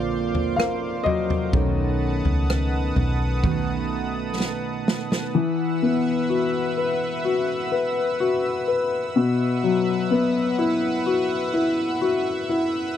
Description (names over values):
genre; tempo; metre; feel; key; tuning
pop ballad; 63 BPM; 4/4; straight; unclear; A4 = 440 Hz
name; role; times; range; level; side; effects
dark upright piano; accompaniment; 0.0-13.0 s; B2 to F5; -22 LUFS; left 3 dB; none
chorused pulse-width pad; sustained chords; 0.0-13.0 s; B4 to E6; -29 LUFS; equal; none
fingerpicked steel-string acoustic guitar; arpeggios; 0.0-5.9 s; Bb2 to F#4; -28 LUFS; right 9 dB; none
vintage muted fingered electric bass; bass; 0.0-4.8 s; Bb1 to Db2; -25 LUFS; equal; none
natural country drum kit; drums; 0.3-5.3 s; kick drum, rim click, snare drum, toms; -25 LUFS; equal; none
room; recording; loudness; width
small room ambience; dry, close 1970s-style studio recording; -20 LUFS; side -10 dB against mid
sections
0.0-5.3 A section; 5.3-13.0 B section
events
upright piano solo 0.0-5.3; drum fill 4.4-5.3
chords
0.0 Bbadd9; 1.5 B7; 5.3 Esus2; 9.2 Bsus4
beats
0.58 | 1.53 2.49 3.44 4.39 | 5.34 6.30 7.25 8.20 | 9.15 10.11 11.06 12.01 | 12.96